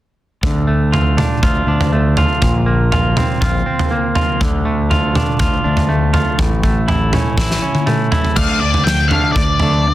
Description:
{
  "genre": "quiet-loud alternative rock",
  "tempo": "121 BPM",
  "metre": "4/4",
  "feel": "straight",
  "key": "D minor",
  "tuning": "A4 = 440 Hz",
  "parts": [
    { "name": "clean electric guitar", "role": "arpeggios", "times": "0.4-9.9 s", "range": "A2 to F4", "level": "-18 LUFS", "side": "right 1 dB", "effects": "none" },
    { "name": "growling fingered electric bass", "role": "bass", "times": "0.4-9.9 s", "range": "A1 to D2", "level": "-17 LUFS", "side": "equal", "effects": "overdrive" },
    { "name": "big rock drum kit", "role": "drums", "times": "0.4-9.7 s", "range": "crash cymbal, kick drum, snare drum, toms", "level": "-17 LUFS", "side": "equal", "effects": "soft clipping on kick, soft clipping on snare" },
    { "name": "octave-fuzz lead guitar", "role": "melody", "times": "8.4-9.9 s", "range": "D5 to G5", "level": "-17 LUFS", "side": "left 2 dB", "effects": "distortion" }
  ],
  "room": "small room ambience",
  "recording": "dense, heavily limited modern master",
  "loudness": "-13 LUFS",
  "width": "side -14 dB against mid",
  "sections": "0.4-8.4 A section; 8.4-9.9 B section",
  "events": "drum fill 7.4-8.4",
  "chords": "0.4 Dm; 2.4 Bbsus2; 4.4 Dm; 6.4 A; 8.4 D5"
}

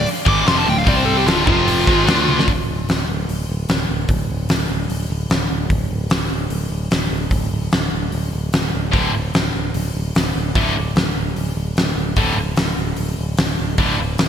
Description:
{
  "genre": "hard rock",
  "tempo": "149 BPM",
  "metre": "4/4",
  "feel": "straight",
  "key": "D minor",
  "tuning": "A4 = 439 Hz",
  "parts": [
    { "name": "dark smooth lead guitar", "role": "melody", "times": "0.0-2.4 s", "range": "F4 to D6", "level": "-21 LUFS", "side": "equal", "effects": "overdrive, ping-pong delay" },
    { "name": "heavy high-gain guitar", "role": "riff", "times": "0.0-2.5, 8.9-14.0 s", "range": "D2 to D4", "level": "-20 LUFS", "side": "left 1 dB", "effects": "distortion" },
    { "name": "modern bright picked electric bass", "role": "bass", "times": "0.0-14.3 s", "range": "D1 to D2", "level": "-22 LUFS", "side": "equal", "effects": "none" },
    { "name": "big rock drum kit", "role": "drums", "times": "0.1-14.3 s", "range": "hi-hat, kick drum, snare drum, toms", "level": "-19 LUFS", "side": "equal", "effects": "none" }
  ],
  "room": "moderate lush hall reverb, RT60 1.9 s, studio reverb",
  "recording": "bright 1980s-style digital production",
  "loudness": "-16 LUFS",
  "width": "side -9 dB against mid",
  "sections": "0.0-2.5 A section; 2.5-14.3 B section",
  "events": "lead electric guitar solo 0.0-2.5; drum fill 2.3",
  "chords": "0.0 Dm; 0.9 C5; 1.3 Dm; 1.5 F5; 1.9 Dm; 2.5 D5"
}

